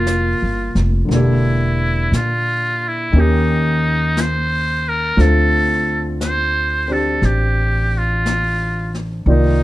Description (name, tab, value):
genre	jazz ballad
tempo	59 BPM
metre	4/4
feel	swing 68% on 8ths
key	unclear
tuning	A4 = 441 Hz
part	trumpet with metal mute	melody	0.0-9.6 s	Eb4 to C5	-20 LUFS	right 1 dB	plate reverb
part	warm grand piano	accompaniment	0.0-9.6 s	D3 to D5	-22 LUFS	left 1 dB	none
part	upright bass	bass	0.0-9.6 s	E1 to Bb2	-18 LUFS	equal	none
part	jazz brush drum kit	drums	0.1-9.6 s	brushed snare drum, hi-hat, snare drum	-29 LUFS	left 3 dB	none
room	light reverb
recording	dark, warm production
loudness	-15 LUFS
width	side -16 dB against mid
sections	0.0-9.6 A section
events	none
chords	0.0 Bb69; 1.1 Em7b5; 3.1 Eb7; 5.2 Dm7